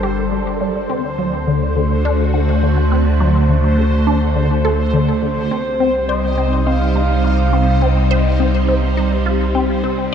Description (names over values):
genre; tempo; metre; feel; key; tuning
ambient, sequencer-driven space music; 104 BPM; 4/4; straight; unclear; A4 = 440 Hz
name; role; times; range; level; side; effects
phased string machine; sustained chords; 0.0-10.1 s; C3 to Bb4; -19 LUFS; equal; ensemble chorus, phaser, shimmer reverb
resonant blip pluck; riff; 0.0-10.0 s; D3 to C5; -21 LUFS; left 3 dB; phaser, shimmer reverb, ping-pong delay
warm sub bass; bass; 0.0-10.1 s; G1 to D2; -18 LUFS; equal; none
bubbling stepped-filter texture; texture; 0.0-10.1 s; C5; -25 LUFS; right 2 dB; chorus, built-in reverb, shimmer reverb
pulse-width lead; melody; 5.5-8.4 s; C5 to F5; -22 LUFS; equal; chorus, shimmer reverb, ping-pong delay
room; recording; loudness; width
wet spring reverb, RT60 2.9 s; echo-heavy mix; -14 LUFS; side -8 dB against mid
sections
0.0-10.1 A section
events
filter sweep on synth arpeggio sound 0.0-10.1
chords
0.0 Gm; 0.9 D; 5.5 Cm